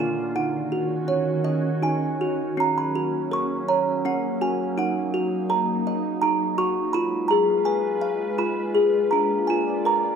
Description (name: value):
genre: children's music, lullaby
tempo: 82 BPM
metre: 3/4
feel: straight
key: Eb minor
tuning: A4 = 439 Hz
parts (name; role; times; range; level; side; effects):
- music box; melody; 0.0-10.2 s; Db4 to Db6; -22 LUFS; equal; none
- glassy FM pad; sustained chords; 0.0-10.2 s; D3 to D5; -28 LUFS; right 1 dB; ensemble chorus, built-in reverb
room: moderate recital hall reverb, RT60 1.4 s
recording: none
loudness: -21 LUFS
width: side -7 dB against mid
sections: 0.0-2.6 A section; 2.6-10.2 B section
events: none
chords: 0.4 Ebm7; 2.6 Gb; 4.8 Ebm; 6.9 Fdim; 9.1 Bb